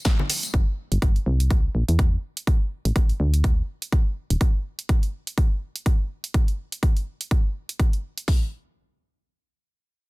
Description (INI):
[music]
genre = piano house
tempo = 124 BPM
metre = 4/4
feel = swing 57% on 16ths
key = unclear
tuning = A4 = 440 Hz
[part]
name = tambourine and congas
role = percussion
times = 0.0-0.5 s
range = none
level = -31 LUFS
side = left 3 dB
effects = none
[part]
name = house drum kit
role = drums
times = 0.1-8.4 s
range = hi-hat, kick drum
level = -20 LUFS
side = equal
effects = none
[part]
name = punchy analog drum machine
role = drums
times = 0.1-8.3 s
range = hi-hat, shaker, snare drum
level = -30 LUFS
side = right 2 dB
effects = overdrive
[part]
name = solid FM bass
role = bass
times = 0.5-4.4 s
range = D1 to E2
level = -21 LUFS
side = equal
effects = sidechain pumping
[sound]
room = small room ambience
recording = dense, heavily limited modern master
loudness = -21 LUFS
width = side -24 dB against mid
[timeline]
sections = 0.0-8.3 A section; 8.3-10.1 B section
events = none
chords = none